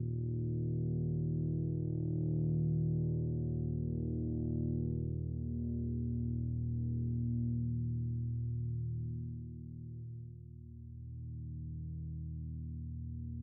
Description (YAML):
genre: ambient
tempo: free time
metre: none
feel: none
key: unclear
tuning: A4 = 445 Hz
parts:
  - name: deep rumbling drone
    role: solo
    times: 0.0-13.4 s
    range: Eb2 to Bb2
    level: -35 LUFS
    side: equal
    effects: built-in reverb
room: wet cathedral reverb, RT60 6.7 s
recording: in a vast, echoing space, small speaker sound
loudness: -35 LUFS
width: side -34 dB against mid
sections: 0.0-10.0 A section; 10.0-13.4 B section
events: none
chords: 0.0 Eb5